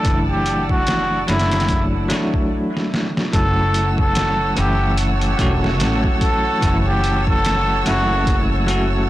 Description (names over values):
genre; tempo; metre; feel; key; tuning
trip hop; 73 BPM; 4/4; swing 57% on 16ths; F# minor; A4 = 440 Hz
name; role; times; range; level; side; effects
trumpet with cup mute; melody; 0.0-8.4 s; E4 to A4; -22 LUFS; equal; tape echo
bell-like tine electric piano; accompaniment; 0.0-9.1 s; E3 to F#4; -22 LUFS; equal; tremolo, tape echo
muted chamber violin section; sustained chords; 0.0-9.1 s; C#5 to E6; -26 LUFS; right 2 dB; none
trip hop sampler-style drum kit; drums; 0.0-8.9 s; hi-hat, kick drum, snare drum; -22 LUFS; equal; overdrive, studio ambience
upright bass; bass; 0.1-9.1 s; E1 to A1; -21 LUFS; equal; tube saturation
room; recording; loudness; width
small room reverb; blown-out, overdriven recording, overdrive; -16 LUFS; side -15 dB against mid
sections
0.0-3.3 A section; 3.3-9.1 B section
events
stop 2.5-3.3; drum fill 2.7-3.3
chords
0.0 Dadd9; 3.3 F#m7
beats
| 0.05 0.87 1.69 2.51 | 3.34 4.16 4.98 5.80 | 6.62 7.45 8.27 9.09